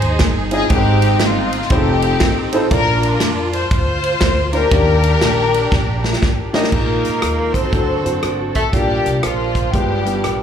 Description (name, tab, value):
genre	uptempo gospel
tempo	120 BPM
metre	4/4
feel	swing 64% on 8ths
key	unclear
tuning	A4 = 438 Hz
part	warm studio string section	melody	0.0-10.4 s	B3 to C5	-19 LUFS	left 3 dB	slapback echo
part	upright bass	bass	0.0-10.4 s	F1 to F#2	-20 LUFS	right 1 dB	none
part	natural country drum kit	drums	0.0-10.4 s	crash cymbal, hi-hat, kick drum, ride cymbal, rim click, snare drum	-19 LUFS	equal	none
part	warm upright piano	accompaniment	0.5-10.4 s	G2 to Eb5	-20 LUFS	equal	slapback echo
part	breathy tenor saxophone	melody	6.7-10.4 s	F3 to C4	-23 LUFS	right 5 dB	slapback echo, tape echo
part	mellow French horn section	sustained chords	6.7-10.4 s	D3 to C4	-32 LUFS	right 3 dB	none
room	light reverb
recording	live gig heard through the venue's PA, club reverb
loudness	-14 LUFS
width	side -8 dB against mid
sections	0.0-6.7 A section; 6.7-10.4 B section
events	drum fill 5.7-6.7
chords	0.0 Fm7; 0.7 Abmaj7; 1.7 F7; 2.7 Bb; 4.7 Ebmaj7; 6.7 Bb7sus4; 7.7 D7; 8.7 Gm7/Bb; 9.7 G7b9